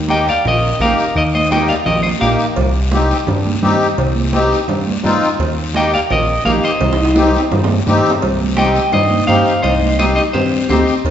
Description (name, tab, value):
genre	latin, cumbia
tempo	170 BPM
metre	4/4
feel	straight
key	C minor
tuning	A4 = 440 Hz
part	fat analog bass	bass	0.0-11.1 s	Bb1 to G2	-18 LUFS	equal	none
part	electric guitar at the edge of break-up	melody	0.1-2.5, 5.8-10.9 s	G4 to G5	-16 LUFS	equal	spring reverb
part	accordion	accompaniment	0.1-10.9 s	Bb3 to G4	-18 LUFS	left 2 dB	light tremolo tuning
part	congas	percussion	0.1-11.1 s	none	-21 LUFS	right 4 dB	none
part	guiro	percussion	0.1-11.1 s	none	-30 LUFS	left 5 dB	none
part	cowbell and timbales	percussion	2.6-11.1 s	none	-22 LUFS	right 1 dB	none
part	clean electric guitar	second line	8.6-10.9 s	C4 to C5	-20 LUFS	left 3 dB	none
room	wet recital hall reverb, RT60 1.4 s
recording	recorded in a church or concert hall, nothing above 7.8 kHz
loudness	-12 LUFS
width	side -9 dB against mid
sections	0.0-8.2 A section; 8.2-11.1 A section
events	drum fill 6.8-8.2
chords	0.0 Eb; 2.6 Cm; 5.4 Eb; 6.8 Cm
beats	0.09 0.44 0.80 | 1.15 1.50 1.86 2.21 | 2.57 2.92 3.27 3.63 | 3.98 4.34 4.69 5.04 | 5.40 5.75 6.10 6.46 | 6.81 7.17 7.52 7.87 | 8.22 8.58 8.93 9.29 | 9.64 9.99 10.34 10.70 | 11.05